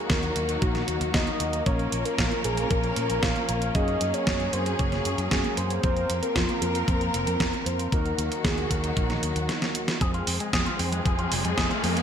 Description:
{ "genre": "italo disco", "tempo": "115 BPM", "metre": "4/4", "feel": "straight", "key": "unclear", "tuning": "A4 = 440 Hz", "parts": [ { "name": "soft octave-layered synth lead", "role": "melody", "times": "0.0-9.5 s", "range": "F4 to F5", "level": "-31 LUFS", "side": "left 1 dB", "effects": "chorus, ping-pong delay, shimmer reverb" }, { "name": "rich studio string section", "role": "sustained chords", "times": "0.0-12.0 s", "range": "Eb3 to Bb4", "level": "-31 LUFS", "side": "left 1 dB", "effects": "vintage 12-bit sampler grit, low-pass filter, shimmer reverb" }, { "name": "analog synth brass", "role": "stabs", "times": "0.0-12.0 s", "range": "Bb3 to C5", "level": "-33 LUFS", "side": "right 2 dB", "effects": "chorus, cassette tape, digital delay, shimmer reverb" }, { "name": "fingered electric bass", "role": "bass", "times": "0.1-12.0 s", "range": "F1 to Bb2", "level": "-30 LUFS", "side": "equal", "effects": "none" }, { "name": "clean 12-bit digital drum machine", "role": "drums", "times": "0.1-12.0 s", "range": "hi-hat, snare drum", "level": "-29 LUFS", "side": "right 1 dB", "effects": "gated reverb" }, { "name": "electronic kick drum", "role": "drums", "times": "0.1-11.7 s", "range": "none", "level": "-28 LUFS", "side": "equal", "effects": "none" }, { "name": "electric guitar with an envelope filter", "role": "arpeggios", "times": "10.0-12.0 s", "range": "Ab3 to Ab4", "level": "-32 LUFS", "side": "left 2 dB", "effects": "vintage 12-bit sampler grit, digital delay, shimmer reverb" }, { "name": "riser", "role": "sound effects", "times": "10.8-12.0 s", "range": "none", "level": "-32 LUFS", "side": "equal", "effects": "none" } ], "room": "moderate lush hall reverb, RT60 1.6 s", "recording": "bright 1980s-style digital production", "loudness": "-23 LUFS", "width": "side -8 dB against mid", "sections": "0.0-10.0 A section; 10.0-12.0 B section", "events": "drum fill 9.5-10.0; riser 10.8-12.0", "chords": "0.0 Ebm; 1.7 Bbm; 3.8 Gbadd9; 5.8 Fsus4; 7.9 Ebm; 10.0 Fm" }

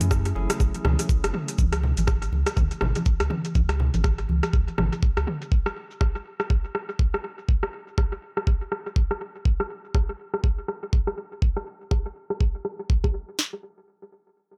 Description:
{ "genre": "afro house", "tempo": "122 BPM", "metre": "4/4", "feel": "swing 59% on 16ths", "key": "unclear", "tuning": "A4 = 441 Hz", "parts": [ { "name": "ethereal airy pad", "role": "sustained chords", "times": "0.0-1.5 s", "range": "C#3 to E4", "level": "-43 LUFS", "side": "equal", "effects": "none" }, { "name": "bell-like tine electric piano", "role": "stabs", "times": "0.0-1.6 s", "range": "A3 to G#4", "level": "-39 LUFS", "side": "equal", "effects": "sidechain pumping, tape echo" }, { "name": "warm sub bass", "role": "bass", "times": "0.0-5.3 s", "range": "F#1 to F#2", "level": "-27 LUFS", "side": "equal", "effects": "sidechain pumping" }, { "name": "deep house drum kit", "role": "drums", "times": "0.0-13.4 s", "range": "cabasa, hi-hat, rim click, toms", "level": "-32 LUFS", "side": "equal", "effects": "overdrive, low-pass filter on perc, low-pass filter on snare, low-pass filter on hats, low-pass filter on toms, tape echo" }, { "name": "congas", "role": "percussion", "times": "0.0-5.1 s", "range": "none", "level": "-32 LUFS", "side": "equal", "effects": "none" }, { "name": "afro-pop drum kit", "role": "drums", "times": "0.1-13.5 s", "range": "kick drum, snare drum", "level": "-24 LUFS", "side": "equal", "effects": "none" } ], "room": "little or no reverb", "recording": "echo-heavy mix", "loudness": "-25 LUFS", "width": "mono", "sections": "0.0-13.4 A section; 13.4-14.6 B section", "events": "filter sweep on drum 0.0-13.4", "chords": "0.0 F#m7; 1.6 C#5; 5.5 N.C." }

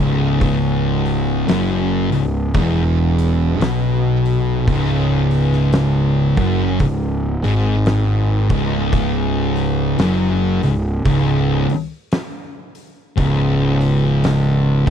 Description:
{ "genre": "stoner and doom metal", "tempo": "56 BPM", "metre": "4/4", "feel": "swing 60% on 8ths", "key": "C# minor", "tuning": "A4 = 440 Hz", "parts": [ { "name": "thick fuzz guitar", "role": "riff", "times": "0.0-14.9 s", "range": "C#2 to B2", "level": "-19 LUFS", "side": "left 7 dB", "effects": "distortion" }, { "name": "thick fuzz guitar", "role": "riff", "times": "0.0-14.9 s", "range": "C#2 to B2", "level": "-20 LUFS", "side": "right 9 dB", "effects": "distortion" }, { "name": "fuzz picked electric bass", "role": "bass", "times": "0.0-14.9 s", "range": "C#1 to B1", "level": "-21 LUFS", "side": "equal", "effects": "overdrive" }, { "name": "oversized low-tuned drum kit", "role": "drums", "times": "0.4-14.9 s", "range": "hi-hat, kick drum, snare drum", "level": "-22 LUFS", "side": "equal", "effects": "none" } ], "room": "little or no reverb", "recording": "dry, close 1970s-style studio recording", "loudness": "-15 LUFS", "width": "side -8 dB against mid", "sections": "0.0-14.9 A section", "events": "none", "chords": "0.0 C#m" }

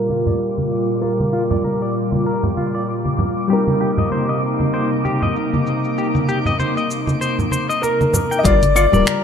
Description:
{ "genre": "sunset chillout", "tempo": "97 BPM", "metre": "4/4", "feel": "swing 57% on 16ths", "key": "G minor", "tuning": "A4 = 440 Hz", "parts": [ { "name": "dark concert grand piano", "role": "melody", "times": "0.0-3.1, 7.8-9.2 s", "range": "Bb4 to Eb5", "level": "-20 LUFS", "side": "left 1 dB", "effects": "tape echo" }, { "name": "nylon-string guitar", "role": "accompaniment", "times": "0.0-9.2 s", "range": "G3 to Bb4", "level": "-24 LUFS", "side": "left 1 dB", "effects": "auto-pan, tape echo" }, { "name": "airy breathy pad", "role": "sustained chords", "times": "0.0-8.4 s", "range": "Bb2 to F4", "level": "-21 LUFS", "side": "left 1 dB", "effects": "chorus" }, { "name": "twinkling granular texture", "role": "texture", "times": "0.3-8.5 s", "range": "D6", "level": "-31 LUFS", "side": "right 1 dB", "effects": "built-in reverb" }, { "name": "semi-hollow electric guitar", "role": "arpeggios", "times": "0.1-9.2 s", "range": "F4 to G5", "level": "-25 LUFS", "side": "left 3 dB", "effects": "low-pass filter, tape echo" }, { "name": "deep house drum kit", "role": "drums", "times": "0.1-9.2 s", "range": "claves, finger snaps, hi-hat, shaker", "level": "-23 LUFS", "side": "left 3 dB", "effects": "overdrive, low-pass filter on hats, low-pass filter on perc, low-pass filter on snare" }, { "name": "congas", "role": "percussion", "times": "0.1-9.2 s", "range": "none", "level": "-22 LUFS", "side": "right 1 dB", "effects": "none" }, { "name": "round analog bass", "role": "bass", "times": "8.4-9.0 s", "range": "D1 to G1", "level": "-18 LUFS", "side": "equal", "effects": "none" }, { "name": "electronic kick drum", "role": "drums", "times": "8.4-8.6 s", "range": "none", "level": "-18 LUFS", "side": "equal", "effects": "overdrive" } ], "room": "moderate plate reverb, RT60 2.4 s", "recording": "low-pass filter", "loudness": "-16 LUFS", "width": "side -7 dB against mid", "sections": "0.0-8.4 A section", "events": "filter sweep on drum 0.0-8.4; filter sweep on clean electric guitar 0.0-8.4; filter sweep 0.0-8.4", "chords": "0.0 Gm7; 3.5 Cm7; 8.4 Gm7" }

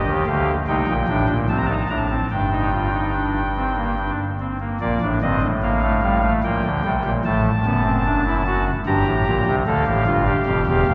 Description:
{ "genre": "classical, baroque-style 3-part fugue for pipe organ", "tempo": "74 BPM", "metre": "3/4", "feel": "straight", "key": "G minor", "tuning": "A4 = 438 Hz", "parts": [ { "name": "pipe organ, soft reed", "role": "solo", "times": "0.0-10.9 s", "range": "D1 to Bb5", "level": "-20 LUFS", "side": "equal", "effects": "none" } ], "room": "wet cathedral reverb, RT60 5.0 s", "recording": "heard from further back in the room, nothing above 7.6 kHz, faint mains hum", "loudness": "-20 LUFS", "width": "mono", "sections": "0.0-4.8 A section; 4.8-10.9 B section", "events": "none", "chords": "0.0 Eb; 0.7 Cm; 1.5 D5/C; 2.3 Gm; 6.4 Gm/Bb; 7.2 F#m; 8.9 Gm; 9.7 Dm" }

